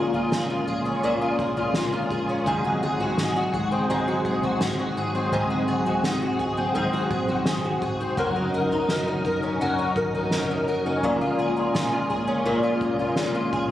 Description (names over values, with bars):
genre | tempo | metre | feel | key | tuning
dream pop | 84 BPM | 4/4 | straight | Bb minor | A4 = 441 Hz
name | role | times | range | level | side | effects
warm analog pad | sustained chords | 0.0-13.7 s | Gb3 to Bb4 | -29 LUFS | right 1 dB | chorus, shimmer reverb
fingerpicked twelve-string acoustic guitar | arpeggios | 0.0-13.7 s | Ab2 to Bb4 | -24 LUFS | left 1 dB | ensemble chorus, ping-pong delay, shimmer reverb
vintage muted fingered electric bass | bass | 0.0-13.7 s | Gb1 to C2 | -36 LUFS | equal | none
soft-mallet drum kit | drums | 0.1-13.7 s | kick drum, snare drum, toms | -31 LUFS | right 1 dB | none
room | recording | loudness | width
moderate huge ambient reverb, RT60 8.1 s | recorded on a phone in the room, club reverb | -22 LUFS | side -12 dB against mid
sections
0.0-13.7 A section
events
none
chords
0.0 Bbm7; 2.5 Ab7; 8.2 Gb6; 11.0 Bbm7